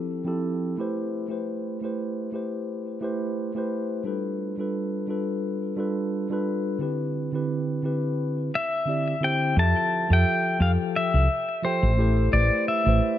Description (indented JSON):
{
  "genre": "sunset chillout",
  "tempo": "87 BPM",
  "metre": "4/4",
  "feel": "swing 55% on 16ths",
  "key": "unclear",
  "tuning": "A4 = 441 Hz",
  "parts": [
    { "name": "mellow tine electric piano", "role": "accompaniment", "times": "0.0-13.2 s", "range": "D3 to G5", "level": "-26 LUFS", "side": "moving between left 4 dB and right 3 dB", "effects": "auto-pan, ping-pong delay" },
    { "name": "pedal steel guitar", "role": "melody", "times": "8.6-13.2 s", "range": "C5 to A5", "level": "-24 LUFS", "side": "left 2 dB", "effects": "ping-pong delay" },
    { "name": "woody fretless electric bass", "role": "bass", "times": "9.6-13.0 s", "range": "A1 to F2", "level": "-20 LUFS", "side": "equal", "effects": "analog chorus" }
  ],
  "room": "light reverb",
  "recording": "none",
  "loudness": "-23 LUFS",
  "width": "side -12 dB against mid",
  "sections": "0.0-9.6 A section; 9.6-13.2 B section",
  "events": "none",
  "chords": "0.0 Fmaj9; 1.0 Am7; 4.1 G9; 6.8 D13sus4; 9.6 Fmaj9; 12.0 Am7"
}